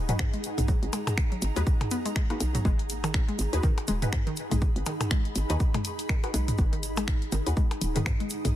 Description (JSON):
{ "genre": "minimal techno", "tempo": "122 BPM", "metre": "4/4", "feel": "swing 58% on 16ths", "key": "G# minor", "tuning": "A4 = 440 Hz", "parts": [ { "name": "hollow knocking FM bass", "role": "bass", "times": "0.0-8.6 s", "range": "D#1 to G#2", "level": "-29 LUFS", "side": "equal", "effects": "sidechain pumping" }, { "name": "ethereal airy pad", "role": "texture", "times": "0.0-8.6 s", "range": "D#4 to D#6", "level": "-36 LUFS", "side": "right 1 dB", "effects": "ensemble chorus, built-in reverb, sidechain pumping" }, { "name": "hollow square pluck", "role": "riff", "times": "0.1-8.2 s", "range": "D#3 to B3", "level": "-35 LUFS", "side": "left 1 dB", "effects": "chorus, sidechain pumping, tape echo" }, { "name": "filtered dub chord stab", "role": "stabs", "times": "0.1-8.0 s", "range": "D#4 to B4", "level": "-38 LUFS", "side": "left 3 dB", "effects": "phaser, ensemble chorus, ping-pong delay" }, { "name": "house drum kit", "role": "drums", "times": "0.1-8.5 s", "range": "finger snaps, hi-hat", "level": "-35 LUFS", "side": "left 2 dB", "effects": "soft clipping on snare" }, { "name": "electronic toms and percussion blips", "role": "percussion", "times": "0.1-8.5 s", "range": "none", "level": "-32 LUFS", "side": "equal", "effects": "none" }, { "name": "tube shaker", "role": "percussion", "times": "0.1-8.5 s", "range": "none", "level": "-41 LUFS", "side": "right 5 dB", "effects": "none" }, { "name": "electronic kick drum", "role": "drums", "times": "0.2-8.2 s", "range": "none", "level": "-26 LUFS", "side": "equal", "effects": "none" } ], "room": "little or no reverb", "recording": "dense, heavily limited modern master", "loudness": "-25 LUFS", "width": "side -13 dB against mid", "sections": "0.0-8.6 A section", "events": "none", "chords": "0.0 G#m7" }